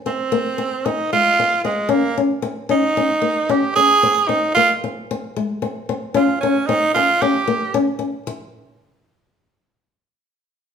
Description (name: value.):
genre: highlife.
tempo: 113 BPM.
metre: 4/4.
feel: straight.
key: unclear.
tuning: A4 = 440 Hz.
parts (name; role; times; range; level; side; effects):
raspy tenor saxophone; melody; 0.1-7.8 s; Ab3 to Ab4; -17 LUFS; right 3 dB; none.
nylon-string guitar; accompaniment; 0.1-8.3 s; Ab3 to Db4; -20 LUFS; left 4 dB; none.
room: moderate large studio reverb, RT60 1.1 s.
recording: band playing live in one room.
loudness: -16 LUFS.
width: side -7 dB against mid.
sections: 0.0-8.3 A section; 8.3-10.4 B section.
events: tenor saxophone solo 0.0-8.3.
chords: 0.0 F5; 1.9 Bbmadd9; 3.0 Eb5; 4.0 N.C.; 6.2 Dbmaj9; 7.2 Bbm6; 8.3 N.C..